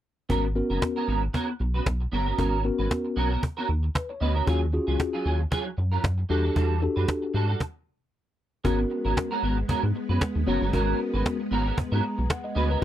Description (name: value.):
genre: early-eighties boogie funk.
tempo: 115 BPM.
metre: 4/4.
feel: swing 56% on 16ths.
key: G# minor.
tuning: A4 = 440 Hz.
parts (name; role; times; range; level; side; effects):
mellow tine electric piano; accompaniment; 0.3-12.8 s; B3 to A#5; -28 LUFS; left 2 dB; slow stereo tremolo.
clean electric guitar; riff; 0.3-12.8 s; F#3 to B4; -30 LUFS; right 4 dB; ensemble chorus.
rubbery square bass; bass; 0.3-12.8 s; F#1 to G#2; -26 LUFS; equal; none.
cajon; drums; 0.3-12.8 s; none; -27 LUFS; equal; none.
string machine, violins; sustained chords; 8.6-12.8 s; G#3 to B3; -33 LUFS; left 1 dB; ensemble chorus.
room: little or no reverb.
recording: dry, close 1970s-style studio recording.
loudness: -24 LUFS.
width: side -12 dB against mid.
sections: 0.3-8.6 A section; 8.6-12.8 B section.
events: stop 7.6-8.6; tine electric piano fill 11.8-12.8.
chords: 0.3 G#m11; 4.5 D#m11; 6.3 Em11; 8.6 G#m11.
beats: | 0.30 0.82 1.34 1.86 | 2.38 2.91 3.43 3.95 | 4.47 4.99 5.52 6.04 | 6.56 7.08 7.60 8.12 | 8.65 9.17 9.69 10.21 | 10.73 11.26 11.78 12.30 | 12.82.